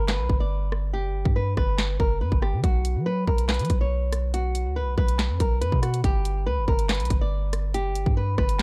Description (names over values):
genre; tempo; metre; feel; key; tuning
hip hop, drill; 141 BPM; 4/4; half-time; unclear; A4 = 441 Hz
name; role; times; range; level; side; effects
flamenco guitar; melody; 0.0-8.6 s; F#4 to D5; -32 LUFS; equal; low-pass filter, tape echo
long sustained 808-style bass; bass; 0.0-8.6 s; F#1 to F#3; -28 LUFS; equal; none
drill drum kit; drums; 0.1-8.6 s; handclaps, hi-hat, kick drum, rim click, snare drum; -27 LUFS; equal; none
room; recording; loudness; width
digital ambience; dark, warm production; -24 LUFS; mono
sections
0.0-8.6 A section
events
break 0.0-2.6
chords
0.0 G; 2.6 B5; 6.0 G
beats
0.08 0.51 | 0.93 1.36 1.78 2.21 | 2.64 3.06 3.49 3.91 | 4.34 4.76 5.19 5.62 | 6.04 6.47 6.89 7.32 | 7.74 8.17 8.59